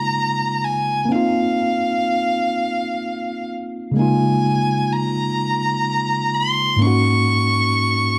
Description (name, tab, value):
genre	R&B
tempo	42 BPM (dotted quarters)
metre	6/8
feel	straight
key	Db major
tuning	A4 = 439 Hz
part	rich violin	melody	0.0-8.2 s	F5 to Db6	-23 LUFS	equal	slapback echo
part	tine electric piano	accompaniment	0.0-8.2 s	Ab2 to Gb4	-22 LUFS	equal	none
room	light reverb, studio reverb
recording	dark, warm production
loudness	-19 LUFS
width	mono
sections	0.0-8.2 A section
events	none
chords	0.0 Db69; 1.1 F7sus4; 4.0 Db69; 6.8 Ab7sus4